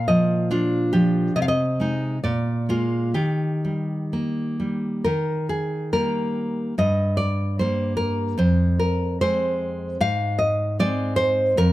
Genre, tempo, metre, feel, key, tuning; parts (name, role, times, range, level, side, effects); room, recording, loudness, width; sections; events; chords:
romantic piece for solo classical guitar; 61-77 BPM; 2/4; rubato; Eb major; A4 = 441 Hz
nylon-string guitar; solo; 0.0-11.7 s; F2 to F5; -20 LUFS; equal
light reverb; close, detailed microphones; -20 LUFS; side -16 dB against mid
0.0-5.0 A section; 5.0-11.7 B section
0.0 Bb; 1.3 Ab/C; 2.2 Bb7; 3.1 Eb; 6.8 Gmadd11; 8.4 Fm; 10.0 Ab6